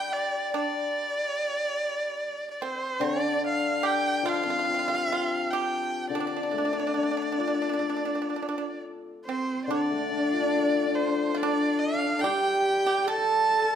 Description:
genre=chinese traditional, Chinese chamber ensemble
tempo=72 BPM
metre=4/4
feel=straight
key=D yu mode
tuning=A4 = 440 Hz
part: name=clear erhu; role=melody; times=0.0-13.8 s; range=C5 to A5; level=-28 LUFS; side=right 1 dB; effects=none
part: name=pipa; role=second line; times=0.0-13.8 s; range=C4 to A4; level=-33 LUFS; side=right 6 dB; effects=none
part: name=hammered dulcimer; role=accompaniment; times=0.0-13.8 s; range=D3 to C5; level=-29 LUFS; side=left 5 dB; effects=none
part: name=warm horsehead fiddle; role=second line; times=9.3-13.8 s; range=C4 to A4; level=-29 LUFS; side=right 4 dB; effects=none
room=wet recital hall reverb, RT60 1.4 s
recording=recorded in a church or concert hall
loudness=-24 LUFS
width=side -9 dB against mid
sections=0.0-9.7 A section; 9.7-13.8 B section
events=none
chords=none

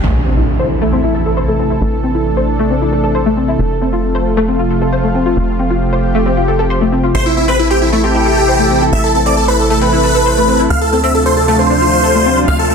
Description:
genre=trance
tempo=135 BPM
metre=4/4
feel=straight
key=A minor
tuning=A4 = 440 Hz
part: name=lush unison pad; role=sustained chords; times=0.0-12.7 s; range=C3 to A4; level=-17 LUFS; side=equal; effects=chorus
part: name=wide unison pluck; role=arpeggios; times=0.0-12.7 s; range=A3 to C5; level=-17 LUFS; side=left 2 dB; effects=ensemble chorus, dub echo
part: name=tight sequencer bass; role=bass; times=0.0-12.7 s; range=F1 to D2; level=-18 LUFS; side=equal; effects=none
part: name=impact and riser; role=sound effects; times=0.0-1.8, 11.9-12.7 s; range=none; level=-19 LUFS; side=equal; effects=none
part: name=big supersaw lead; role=melody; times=7.1-12.7 s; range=E4 to F5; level=-12 LUFS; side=right 1 dB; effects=phaser, dub echo
room=moderate digital room reverb, RT60 0.9 s, digital ambience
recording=dense, heavily limited modern master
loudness=-11 LUFS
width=side -6 dB against mid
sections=0.0-12.7 A section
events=impact 0.0-1.8; filter sweep on synth pluck 0.0-12.7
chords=0.0 Am; 3.6 F; 7.1 Am; 10.7 Dm7

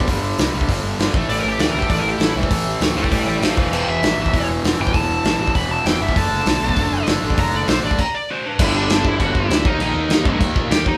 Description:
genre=punk rock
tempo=198 BPM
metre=4/4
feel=straight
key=G major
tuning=A4 = 440 Hz
part: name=distorted electric guitar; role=riff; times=0.0-10.9 s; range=E2 to Eb4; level=-24 LUFS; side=equal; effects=distortion
part: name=fuzz picked electric bass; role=bass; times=0.0-11.0 s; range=E1 to Bb2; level=-26 LUFS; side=equal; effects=overdrive
part: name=loose indie drum kit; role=drums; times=0.0-10.9 s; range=crash cymbal, hi-hat, kick drum, snare drum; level=-22 LUFS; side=equal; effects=none
part: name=high-gain lead guitar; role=melody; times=1.3-11.0 s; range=D4 to B5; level=-25 LUFS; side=equal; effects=distortion
room=light reverb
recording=band playing live in one room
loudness=-18 LUFS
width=mono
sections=0.0-8.6 A section; 8.6-11.0 B section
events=lead electric guitar solo 0.0-8.6; stop 8.0-8.6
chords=0.0 G5; 1.1 A5; 3.6 E5; 6.2 D/F#; 8.6 G5; 9.7 Eb5

